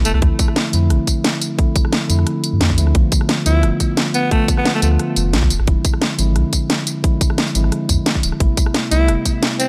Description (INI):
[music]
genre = liquid drum and bass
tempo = 176 BPM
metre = 4/4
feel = swing 53% on 16ths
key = unclear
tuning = A4 = 440 Hz
[part]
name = mellow tine electric piano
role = accompaniment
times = 0.0-9.7 s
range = C3 to F4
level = -24 LUFS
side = equal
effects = tape echo
[part]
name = warm sub bass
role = bass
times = 0.0-9.2 s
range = D1 to G2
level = -18 LUFS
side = equal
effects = none
[part]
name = raspy alto saxophone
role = melody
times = 0.1-0.2, 3.5-4.9, 8.9-9.7 s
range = A3 to E4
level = -24 LUFS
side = equal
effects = tape echo
[part]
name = garage drum kit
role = drums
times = 0.1-9.7 s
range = hi-hat, rim click, snare drum, tambourine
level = -22 LUFS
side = equal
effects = none
[part]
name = electronic kick drum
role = drums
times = 0.2-9.3 s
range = none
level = -19 LUFS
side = equal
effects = none
[sound]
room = light reverb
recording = none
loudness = -17 LUFS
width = mono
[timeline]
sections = 0.0-9.7 A section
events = none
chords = 0.2 Dm9; 2.9 Bm7b5; 5.5 E7b9b13; 8.4 Am9